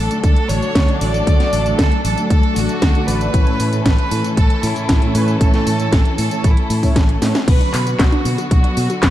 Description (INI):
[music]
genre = italo disco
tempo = 116 BPM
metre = 4/4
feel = straight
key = unclear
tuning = A4 = 440 Hz
[part]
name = rich chamber violin section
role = melody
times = 0.0-9.1 s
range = E4 to D5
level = -23 LUFS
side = right 1 dB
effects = ping-pong delay
[part]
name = rich symphonic string section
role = sustained chords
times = 0.0-9.1 s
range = D3 to A4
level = -23 LUFS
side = left 2 dB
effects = none
[part]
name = fingered electric bass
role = bass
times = 0.0-9.1 s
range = A1 to B2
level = -20 LUFS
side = equal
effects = none
[part]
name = mellow synth brass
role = stabs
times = 0.1-7.4 s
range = A2 to D5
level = -24 LUFS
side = right 2 dB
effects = chorus, cassette tape
[part]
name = house drum kit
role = drums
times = 0.1-9.1 s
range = crash cymbal, handclaps, hi-hat, snare drum, tambourine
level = -22 LUFS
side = equal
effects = overdrive
[part]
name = electronic kick drum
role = drums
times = 0.2-9.1 s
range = none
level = -14 LUFS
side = equal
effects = overdrive
[part]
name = warbly dusty pluck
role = arpeggios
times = 7.5-9.1 s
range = B3 to F#4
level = -26 LUFS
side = left 2 dB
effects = chorus, ping-pong delay
[sound]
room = light reverb, digital ambience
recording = dark, warm production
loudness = -13 LUFS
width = side -13 dB against mid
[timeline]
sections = 0.0-7.5 A section; 7.5-9.1 B section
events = drum fill 7.2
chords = 0.0 D; 3.3 A; 7.5 Bm